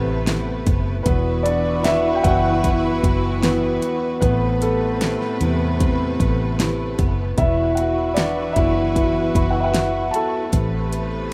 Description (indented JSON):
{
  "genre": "pop ballad",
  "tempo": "76 BPM",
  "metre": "4/4",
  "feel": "straight",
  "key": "unclear",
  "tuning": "A4 = 440 Hz",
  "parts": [
    { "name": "warm concert grand piano", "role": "accompaniment", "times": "0.0-11.3 s", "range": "C3 to A5", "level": "-24 LUFS", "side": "equal", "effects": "none" },
    { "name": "warm studio string section", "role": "sustained chords", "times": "0.0-11.3 s", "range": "C3 to B4", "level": "-27 LUFS", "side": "equal", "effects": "none" },
    { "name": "picked steel-string acoustic guitar", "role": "arpeggios", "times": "0.0-11.3 s", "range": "E2 to F#4", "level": "-32 LUFS", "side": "equal", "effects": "digital delay" },
    { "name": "vintage muted fingered electric bass", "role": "bass", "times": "0.0-11.3 s", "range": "E1 to E2", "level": "-26 LUFS", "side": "equal", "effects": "none" },
    { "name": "pop drum kit", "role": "drums", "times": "0.3-11.1 s", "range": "hi-hat, kick drum, snare drum", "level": "-24 LUFS", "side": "equal", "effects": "none" }
  ],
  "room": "studio ambience",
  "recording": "rough home demo mix",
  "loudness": "-20 LUFS",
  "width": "mono",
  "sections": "0.0-11.3 A section",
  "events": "grand piano solo 0.0-11.3",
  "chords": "0.0 Amadd9; 1.1 Esus2; 4.2 Amadd9; 7.4 Esus2; 10.5 Amadd9"
}